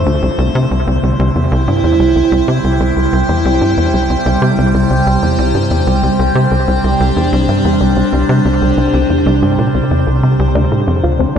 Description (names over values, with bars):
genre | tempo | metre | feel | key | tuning
ambient, sequencer-driven space music | 93 BPM | 4/4 | straight | unclear | A4 = 441 Hz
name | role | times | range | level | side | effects
evolving wavetable pad | sustained chords | 0.0-11.4 s | C3 to G5 | -14 LUFS | right 1 dB | phaser, built-in reverb
tight sequencer bass | riff | 0.0-11.4 s | C2 to C3 | -13 LUFS | equal | vintage 12-bit sampler grit, analog delay
soft round pluck | arpeggios | 10.6-11.4 s | C4 to F4 | -19 LUFS | left 3 dB | chorus, auto-pan, analog delay
room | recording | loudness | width
wet huge ambient reverb, RT60 8.2 s | dark, warm production, nothing above 10.4 kHz | -10 LUFS | side -8 dB against mid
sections
0.0-11.4 A section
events
none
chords
0.2 C; 10.5 Dm7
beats
| 0.23 0.87 1.52 2.16 | 2.81 3.45 4.10 4.74 | 5.39 6.03 6.68 7.32 | 7.97 8.61 9.26 9.90 | 10.55 11.19